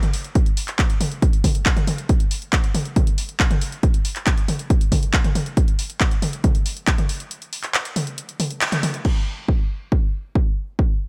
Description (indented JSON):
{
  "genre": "trance",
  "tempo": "138 BPM",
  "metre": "4/4",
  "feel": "straight",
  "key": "none",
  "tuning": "none",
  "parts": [
    { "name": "techno drum kit", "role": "drums", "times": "0.0-9.1 s", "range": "crash cymbal, handclaps, hi-hat, toms", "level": "-26 LUFS", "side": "equal", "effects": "none" },
    { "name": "electronic kick drum", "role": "drums", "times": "0.4-10.9 s", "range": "none", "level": "-21 LUFS", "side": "equal", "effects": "none" }
  ],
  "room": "little or no reverb",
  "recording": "none",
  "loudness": "-21 LUFS",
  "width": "mono",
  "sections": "0.0-9.0 A section; 9.0-11.1 B section",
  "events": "break 7.3-9.0; band accent 8.6",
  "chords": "none"
}